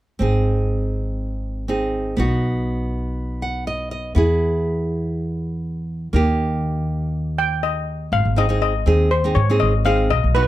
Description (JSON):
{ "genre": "calypso", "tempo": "121 BPM", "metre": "4/4", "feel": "swing 54% on 16ths", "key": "unclear", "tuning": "A4 = 439 Hz", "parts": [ { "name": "nylon-string guitar", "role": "accompaniment", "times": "0.2-10.4 s", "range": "Bb3 to F#5", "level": "-23 LUFS", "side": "right 2 dB", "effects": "none" }, { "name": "upright bass", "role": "bass", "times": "0.2-10.5 s", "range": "Ab1 to Ab2", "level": "-21 LUFS", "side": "equal", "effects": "none" }, { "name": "steel pan", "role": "melody", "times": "7.4-10.5 s", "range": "B4 to G5", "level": "-21 LUFS", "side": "left 3 dB", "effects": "none" } ], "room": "light reverb", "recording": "none", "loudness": "-18 LUFS", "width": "side -14 dB against mid", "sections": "0.2-8.1 A section; 8.1-10.5 B section", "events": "nylon-string guitar fill 3.2-4.2", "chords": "0.2 Ab; 2.2 B; 4.2 E; 6.1 Eb; 8.1 Ab" }